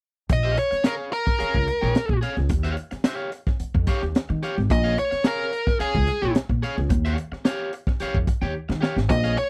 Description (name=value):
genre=funk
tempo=109 BPM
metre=4/4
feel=straight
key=Bb dorian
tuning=A4 = 441 Hz
part: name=nasal lead guitar with a parked wah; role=melody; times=0.3-9.5 s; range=Ab4 to Eb5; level=-26 LUFS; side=equal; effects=overdrive
part: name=electric guitar at the edge of break-up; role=accompaniment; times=0.3-9.4 s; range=G4 to G5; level=-33 LUFS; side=equal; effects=none
part: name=upright bass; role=bass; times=0.3-9.3 s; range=Ab1 to Eb3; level=-27 LUFS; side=equal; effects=none
part: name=crunchy breakbeat drum kit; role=drums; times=0.3-9.5 s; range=hi-hat, kick drum, snare drum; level=-26 LUFS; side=equal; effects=none
room=little or no reverb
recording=dry, close 1970s-style studio recording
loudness=-24 LUFS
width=mono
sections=0.3-9.5 A section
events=drum fill 8.6-9.1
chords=0.3 Bbm7; 2.5 Eb9; 4.7 Bbm7; 6.9 Eb9